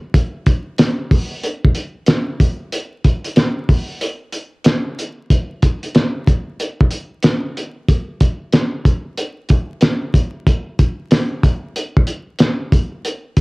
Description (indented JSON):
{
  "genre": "hip hop",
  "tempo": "93 BPM",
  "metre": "4/4",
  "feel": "swing 65% on 16ths",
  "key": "none",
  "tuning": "none",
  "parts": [
    { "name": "cloth-damped thuddy drum kit", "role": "drums", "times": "0.1-13.4 s", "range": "hi-hat, kick drum, snare drum", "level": "-14 LUFS", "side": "equal", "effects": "cassette tape" }
  ],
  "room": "light reverb",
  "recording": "home recording on cassette, vinyl crackle",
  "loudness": "-15 LUFS",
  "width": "side -29 dB against mid",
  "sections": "0.0-5.3 A section; 5.3-13.4 B section",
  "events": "break 4.0-5.3",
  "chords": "none"
}